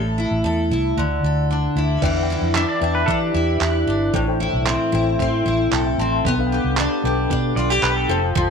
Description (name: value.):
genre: acoustic pop.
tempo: 114 BPM.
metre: 4/4.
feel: straight.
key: G mixolydian.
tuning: A4 = 442 Hz.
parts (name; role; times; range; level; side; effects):
picked steel-string acoustic guitar; accompaniment; 0.0-8.5 s; A2 to B4; -20 LUFS; equal; double-tracked left and right.
vintage muted fingered electric bass; bass; 0.0-8.5 s; F1 to E3; -23 LUFS; equal; none.
mellow reed electric piano; accompaniment; 2.0-8.5 s; D4 to C6; -26 LUFS; left 13 dB; fast tremolo.
dusty soul sampler-style drum kit; drums; 2.0-8.5 s; crash cymbal, handclaps, kick drum; -25 LUFS; right 4 dB; none.
pedal steel guitar; second line; 2.6-4.0, 7.6-8.2 s; G4 to E5; -24 LUFS; equal; slapback echo.
room: digital ambience.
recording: 1960s-style stereo.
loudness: -17 LUFS.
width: side -6 dB against mid.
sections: 0.0-2.0 A section; 2.0-8.5 B section.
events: reed electric piano fill 5.5-6.2.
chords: 0.0 Am; 1.0 Dsus2; 2.0 Em7; 4.1 Am7; 6.2 Gadd9/B.